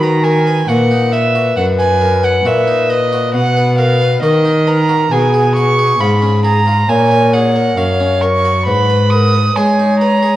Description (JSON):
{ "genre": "classical, baroque-style sonata movement with continuo", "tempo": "68 BPM", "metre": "4/4", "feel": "straight", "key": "B major, F# major from 3.4 s", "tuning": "A4 = 440 Hz", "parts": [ { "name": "baroque flute", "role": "melody", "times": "0.0-10.4 s", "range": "F#4 to C#5", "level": "-17 LUFS", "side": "left 4 dB", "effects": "none" }, { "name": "rich violin", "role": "second line", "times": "0.0-10.4 s", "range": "D#5 to D#6", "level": "-16 LUFS", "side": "right 3 dB", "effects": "none" }, { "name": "harpsichord", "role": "accompaniment", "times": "0.0-10.4 s", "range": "F#2 to B4", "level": "-18 LUFS", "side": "left 1 dB", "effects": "none" }, { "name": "dark cello", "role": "bass", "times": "0.0-10.4 s", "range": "F#2 to G#3", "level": "-15 LUFS", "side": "right 1 dB", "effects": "none" } ], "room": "wet recital hall reverb, RT60 1.3 s", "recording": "worn, warbling old tape, cassette tape, warbly pitch drift", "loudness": "-10 LUFS", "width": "side -14 dB against mid", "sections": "0.0-10.4 A section", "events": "none", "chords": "0.0 B; 5.1 C#7/B; 6.9 F#/A#; 8.7 G#m" }